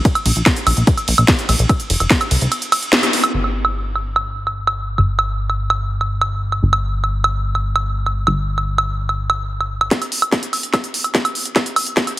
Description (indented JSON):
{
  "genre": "psychedelic trance",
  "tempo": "146 BPM",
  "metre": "4/4",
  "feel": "straight",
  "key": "unclear",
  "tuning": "A4 = 442 Hz",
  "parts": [
    { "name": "electronic kick drum", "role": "drums", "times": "0.1-2.2, 9.9-12.1 s", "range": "none", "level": "-15 LUFS", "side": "equal", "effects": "high-pass filter on kick, high-pass filter on room" },
    { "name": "techno drum kit", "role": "drums", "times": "0.1-12.2 s", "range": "hi-hat, ride cymbal, snare drum, woodblock", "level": "-17 LUFS", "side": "right 1 dB", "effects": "low-pass filter on hats, low-pass filter on perc, low-pass filter on snare, low-pass filter on cymbals, low-pass filter on room" },
    { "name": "plucky analog bass", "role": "bass", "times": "0.3-9.9 s", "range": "F1 to C2", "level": "-19 LUFS", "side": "equal", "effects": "none" }
  ],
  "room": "moderate lush hall reverb, RT60 1.8 s",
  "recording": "heavily compressed radio sound, multiband compression",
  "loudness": "-15 LUFS",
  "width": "side -16 dB against mid",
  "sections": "0.0-3.3 A section; 3.3-9.9 B section; 9.9-12.2 C section",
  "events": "drop 0.0-3.3; kick drops out 2.5-3.3; band accent 2.9; build-up 9.9-12.2; drum fill 9.9-12.2",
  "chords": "none"
}